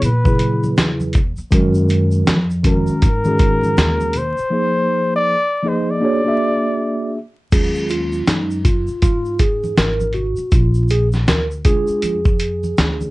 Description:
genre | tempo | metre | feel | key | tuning
hip hop, jazz-hop | 80 BPM | 4/4 | swing 62% on 16ths | Eb minor | A4 = 440 Hz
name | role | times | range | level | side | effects
trumpet with bucket mute | melody | 0.0-7.2 s | Bb4 to D5 | -19 LUFS | left 2 dB | none
mellow tine electric piano | accompaniment | 0.0-13.1 s | Db3 to Fb5 | -19 LUFS | right 1 dB | medium stereo tremolo
upright bass | bass | 0.0-13.1 s | Ab1 to Bb2 | -20 LUFS | equal | none
dusty soul sampler-style drum kit | drums | 0.0-13.0 s | crash cymbal, hi-hat, kick drum, snare drum | -16 LUFS | equal | none
congas and tube shaker | percussion | 0.0-13.1 s | none | -30 LUFS | left 1 dB | none
room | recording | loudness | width
light reverb | worn, warbling old tape, cassette tape, vinyl crackle, warbly pitch drift, nothing above 10.9 kHz | -15 LUFS | side -20 dB against mid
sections
0.0-7.5 A section; 7.5-13.1 B section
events
break 4.5-7.5; tine electric piano solo 7.5-13.1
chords
0.0 Eadd9; 1.5 Gbmaj9; 4.5 Fm7; 6.0 Bb7b13; 7.5 Ebm11; 10.5 Bb7

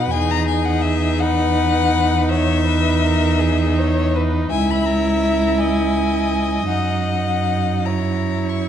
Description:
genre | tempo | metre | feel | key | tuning
classical, slow romantic movement for string quartet | 47-57 BPM (dotted quarters) | 12/8 | rubato | unclear | A4 = 440 Hz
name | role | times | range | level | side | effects
rich violin | melody | 0.0-8.7 s | E5 to C#6 | -23 LUFS | left 8 dB | none
rich violin | second line | 0.0-8.7 s | G#4 to E5 | -26 LUFS | left 2 dB | none
rich viola | accompaniment | 0.0-8.7 s | D#4 to E4 | -22 LUFS | equal | none
rich cello | bass | 0.0-8.7 s | C#2 to F#2 | -20 LUFS | right 2 dB | none
room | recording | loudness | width
moderate scoring stage reverb, RT60 1.6 s | dark, warm production | -16 LUFS | side -9 dB against mid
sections
0.0-8.7 A section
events
none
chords
0.1 Emaj7; 4.5 C#m; 6.7 D#m/F#; 7.8 F#7

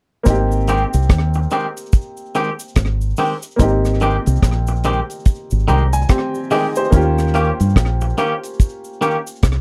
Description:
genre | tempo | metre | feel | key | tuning
lovers rock reggae | 72 BPM | 4/4 | swing 61% on 16ths | Ab major | A4 = 440 Hz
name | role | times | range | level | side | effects
clear baby grand piano | accompaniment | 0.2-9.6 s | Bb3 to Bb5 | -24 LUFS | equal | slapback echo
deep dub fingered electric bass | bass | 0.3-9.6 s | Ab1 to G2 | -19 LUFS | equal | none
deep reggae drum kit | drums | 0.3-9.6 s | hi-hat, kick drum, rim click | -16 LUFS | equal | none
cabasa | percussion | 0.3-9.6 s | none | -40 LUFS | equal | slapback echo
twangy electric guitar | stabs | 0.7-9.2 s | Eb3 to G4 | -21 LUFS | equal | none
room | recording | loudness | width
little or no reverb | dry, close 1970s-style studio recording | -17 LUFS | mono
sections
0.3-9.6 A section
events
grand piano fill 5.3-6.9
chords
0.3 Abmaj7; 6.9 Eb7

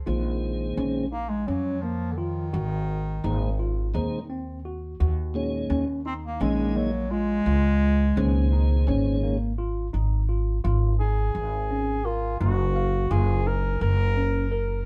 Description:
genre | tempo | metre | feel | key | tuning
progressive instrumental, progressive | 170 BPM (eighths) | 7/8 | straight | unclear | A4 = 439 Hz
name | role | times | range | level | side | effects
upright bass | bass | 0.0-14.8 s | Gb1 to F2 | -28 LUFS | equal | none
mellow tonewheel organ | accompaniment | 0.1-9.4 s | Bb2 to Eb4 | -31 LUFS | equal | slow rotary speaker
bright tine electric piano | arpeggios | 0.1-14.8 s | Bb3 to F5 | -34 LUFS | equal | none
warm bass clarinet | melody | 1.1-14.6 s | D3 to Bb4 | -30 LUFS | equal | digital delay
room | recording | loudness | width
light reverb | band playing live in one room | -25 LUFS | mono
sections
0.1-9.9 A section; 9.9-14.9 B section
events
bass clarinet solo 0.1-9.9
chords
0.1 Bbm7; 2.5 Ab7; 5.0 Ebm7; 7.5 Dbmaj7; 9.9 Ab5; 12.4 Gb

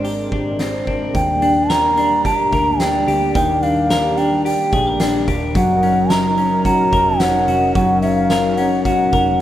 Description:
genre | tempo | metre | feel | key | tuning
dream pop | 109 BPM | 4/4 | straight | Eb major | A4 = 440 Hz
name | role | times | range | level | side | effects
warm analog pad | sustained chords | 0.0-9.4 s | Gb3 to D5 | -25 LUFS | right 1 dB | chorus
clean electric guitar | arpeggios | 0.0-9.4 s | Eb3 to Bb4 | -19 LUFS | left 2 dB | wide subtle chorus, tape echo
vintage muted picked electric bass | bass | 0.0-9.4 s | Eb1 to Eb2 | -26 LUFS | right 1 dB | none
oversized low-tuned drum kit | drums | 0.0-9.3 s | hi-hat, kick drum, snare drum, tambourine | -24 LUFS | equal | none
mellow bansuri | melody | 1.2-9.4 s | F5 to Bb5 | -17 LUFS | right 1 dB | tape echo
room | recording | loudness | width
moderate lush hall reverb, RT60 1.7 s, small room ambience | rough home demo mix | -14 LUFS | side -12 dB against mid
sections
0.0-1.1 A section; 1.1-9.4 B section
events
none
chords
0.0 Abmaj9#11; 1.1 Ebmaj7; 5.6 Gb6

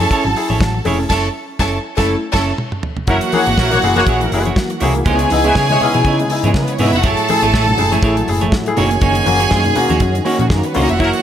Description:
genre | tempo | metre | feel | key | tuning
disco | 121 BPM | 4/4 | swing 56% on 16ths | unclear | A4 = 440 Hz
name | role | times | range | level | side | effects
clear studio violin section | second line | 0.0-11.2 s | G#3 to A5 | -18 LUFS | equal | none
clean electric guitar | accompaniment | 0.0-11.2 s | A3 to C#5 | -22 LUFS | right 5 dB | spring reverb
hollow-body short-scale picked electric bass | bass | 0.0-11.1 s | E#1 to C#3 | -19 LUFS | equal | none
warm grand piano | accompaniment | 0.1-11.1 s | C#3 to G#4 | -20 LUFS | left 4 dB | tube saturation
damped 70s drum kit | drums | 0.1-11.2 s | crash cymbal, hi-hat, kick drum, snare drum, toms | -20 LUFS | equal | none
congas | percussion | 0.1-11.1 s | none | -26 LUFS | left 4 dB | none
percussive tonewheel organ | sustained chords | 3.1-11.2 s | A2 to F#4 | -24 LUFS | right 1 dB | chorus vibrato, fast rotary speaker
warm horn section | stabs | 3.1-5.9, 11.0-11.1 s | E3 to C#5 | -18 LUFS | left 1 dB | none
room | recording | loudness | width
light reverb, small room ambience | none | -13 LUFS | side -10 dB against mid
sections
0.0-3.1 A section; 3.1-11.2 B section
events
band accent 1.1-3.1; drum fill 2.1-3.1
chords
0.0 F#m7; 3.1 F#7; 5.1 C#m7; 7.0 F#m9; 8.8 D#m7/F#

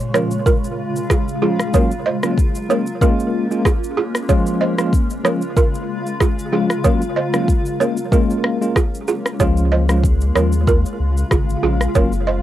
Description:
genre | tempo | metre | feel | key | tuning
afrobeats | 94 BPM | 4/4 | swing 55% on 16ths | Db major | A4 = 440 Hz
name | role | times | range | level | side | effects
granular cloud pad | sustained chords | 0.0-12.4 s | Db3 to F4 | -24 LUFS | left 1 dB | built-in reverb, cassette tape
afro-pop drum kit | drums | 0.0-12.3 s | kick drum, rim click, shaker | -18 LUFS | equal | cassette tape
tine electric piano | accompaniment | 0.1-12.1 s | F3 to F4 | -20 LUFS | left 2 dB | medium stereo tremolo, cassette tape
balafon | riff | 0.1-12.4 s | F4 to Eb5 | -21 LUFS | right 5 dB | cassette tape, analog delay
sub bass with octave | bass | 9.4-12.4 s | Gb1 to Eb2 | -18 LUFS | equal | none
room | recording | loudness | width
light reverb | home recording on cassette | -15 LUFS | side -12 dB against mid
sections
0.0-12.4 A section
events
none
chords
0.0 Db; 1.7 Gbmaj7; 2.7 Bbm7; 4.3 Db; 6.8 Gbmaj7; 7.8 Bbm7; 9.4 Db

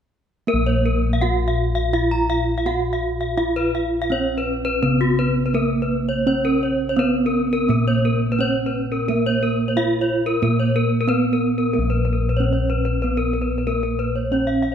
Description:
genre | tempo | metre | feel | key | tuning
Balinese gamelan | 83-93 BPM | 4/4 | straight | Bb pelog | A4 = 440 Hz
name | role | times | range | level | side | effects
gamelan-type bronze metallophone | melody | 0.5-14.7 s | Bb3 to Gb4-40c | -22 LUFS | right 4 dB | none
gamelan-type bronze metallophone | arpeggios | 0.5-14.7 s | Gb4-40c to Bb5 | -23 LUFS | left 3 dB | none
gamelan-type bossed gongs | bass | 0.5-14.7 s | Bb1 to Bb4 | -22 LUFS | left 1 dB | none
room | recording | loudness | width
moderate recital hall reverb, RT60 1.4 s | none | -18 LUFS | side -8 dB against mid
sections
0.5-11.7 A section; 11.7-14.7 B section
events
none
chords
none

